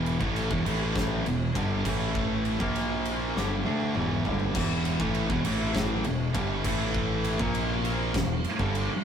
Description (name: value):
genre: stoner and doom metal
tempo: 100 BPM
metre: 4/4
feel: straight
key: E phrygian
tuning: A4 = 440 Hz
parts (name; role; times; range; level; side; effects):
- thick fuzz guitar; riff; 0.0-8.9 s; E2 to D4; -33 LUFS; left 4 dB; distortion
- thick fuzz guitar; riff; 0.0-8.9 s; E2 to D4; -32 LUFS; right 4 dB; distortion
- tight distorted guitar; riff; 0.0-8.9 s; E2 to D4; -32 LUFS; left 1 dB; distortion
- growling fingered electric bass; bass; 0.0-8.9 s; E1 to D2; -33 LUFS; equal; overdrive
- oversized low-tuned drum kit; drums; 0.1-8.9 s; crash cymbal, kick drum, ride cymbal, snare drum, toms; -31 LUFS; equal; none
room: moderate booth ambience, RT60 0.3 s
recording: rough rehearsal-room recording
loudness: -25 LUFS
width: side -8 dB against mid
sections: 0.0-4.6 A section; 4.6-9.0 A section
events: drum fill 3.4-4.6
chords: 0.0 E5; 0.7 A5; 1.3 Em; 1.9 A5; 2.6 A#5; 3.4 Em; 4.6 E5; 5.5 A5; 6.1 Em; 6.7 A5; 7.4 A#5; 8.1 Em